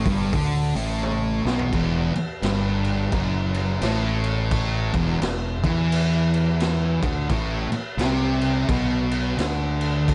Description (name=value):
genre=stoner and doom metal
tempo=86 BPM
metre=4/4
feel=swing 61% on 8ths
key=E minor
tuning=A4 = 441 Hz
part: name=fuzz guitar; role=riff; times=0.0-10.1 s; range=E2 to E3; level=-30 LUFS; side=equal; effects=distortion
part: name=thick fuzz guitar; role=riff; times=0.0-10.1 s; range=E2 to E3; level=-27 LUFS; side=equal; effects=distortion
part: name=fuzz fingered electric bass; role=bass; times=0.0-10.1 s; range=E1 to E2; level=-29 LUFS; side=equal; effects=overdrive
part: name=raw garage drum kit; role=drums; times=0.1-10.1 s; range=crash cymbal, hi-hat, kick drum, snare drum, toms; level=-30 LUFS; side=equal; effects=none
room=light reverb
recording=dark, warm production, nothing above 10.8 kHz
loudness=-23 LUFS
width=mono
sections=0.0-1.7 A section; 1.7-10.1 B section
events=drum fill 1.0-1.7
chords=0.0 A5; 1.7 Em; 7.3 Amadd9